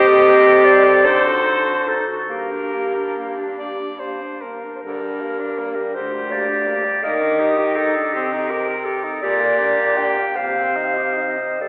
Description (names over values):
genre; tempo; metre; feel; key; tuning
classical, lyrical piece for single-reed quartet; 46-56 BPM (dotted quarters); 6/8; rubato; G minor; A4 = 439 Hz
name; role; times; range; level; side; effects
mellow clarinet; melody; 0.0-11.7 s; G4 to G5; -19 LUFS; equal; none
bright clarinet; second line; 0.0-11.7 s; Bb3 to C5; -23 LUFS; equal; none
clear tenor saxophone; accompaniment; 0.0-11.7 s; D3 to D5; -21 LUFS; equal; none
clear baritone saxophone; bass; 0.0-11.7 s; D2 to Eb3; -23 LUFS; equal; none
room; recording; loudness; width
wet concert hall reverb, RT60 1.9 s; recorded in a church or concert hall, telephone sound; -15 LUFS; side -27 dB against mid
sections
0.0-4.8 A section; 4.8-11.7 B section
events
none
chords
0.0 Adim/C; 1.1 D7b9; 2.3 Gm; 7.0 Ebmaj7; 8.1 Cm7; 9.2 Gm/Bb; 10.4 Cm